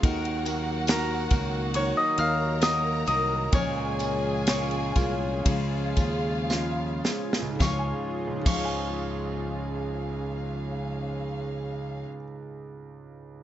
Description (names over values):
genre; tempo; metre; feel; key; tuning
pop ballad; 53-71 BPM; 4/4; straight; Db major; A4 = 441 Hz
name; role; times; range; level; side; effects
warm studio violin section; second line; 0.0-12.0 s; Db4 to Bb5; -36 LUFS; left 1 dB; none
warm concert grand piano; accompaniment; 0.0-13.4 s; Db2 to Ab5; -33 LUFS; right 4 dB; none
chorused pulse-width pad; sustained chords; 0.0-11.2 s; Db3 to Bb4; -37 LUFS; equal; none
picked steel-string acoustic guitar; arpeggios; 0.0-12.2 s; Db3 to Db5; -37 LUFS; left 6 dB; tape echo
fingered electric bass; bass; 0.0-12.0 s; C2 to Eb2; -31 LUFS; equal; none
natural country drum kit; drums; 0.0-8.8 s; crash cymbal, kick drum, ride cymbal, snare drum; -28 LUFS; equal; none
tambourine; percussion; 0.0-8.8 s; none; -40 LUFS; right 5 dB; none
Celtic harp; melody; 0.9-12.1 s; Bb4 to F6; -29 LUFS; left 2 dB; none
room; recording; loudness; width
light reverb, small room ambience; nothing above 7.8 kHz; -25 LUFS; side -12 dB against mid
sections
0.0-7.6 A section; 7.6-12.2 B section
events
slowing down 0.0-7.6; drum fill 6.5-7.6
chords
0.0 Ebm; 3.5 Bbm7/Db; 5.5 Db